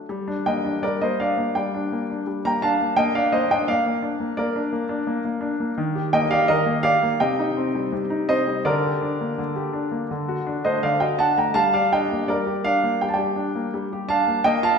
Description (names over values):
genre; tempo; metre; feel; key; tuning
classical-period piano sonatina; 83 BPM; 4/4; rubato; G minor; A4 = 439 Hz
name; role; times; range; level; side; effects
warm baby grand piano; solo; 0.0-14.8 s; C3 to Bb5; -20 LUFS; equal; none
room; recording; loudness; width
wet recital hall reverb, RT60 1.6 s; recorded in a church or concert hall; -20 LUFS; side -6 dB against mid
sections
0.1-14.8 A section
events
none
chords
0.1 Gm; 3.0 Bb; 5.8 Eb; 7.2 Cm; 8.7 Gm/D; 10.1 D; 11.6 Gm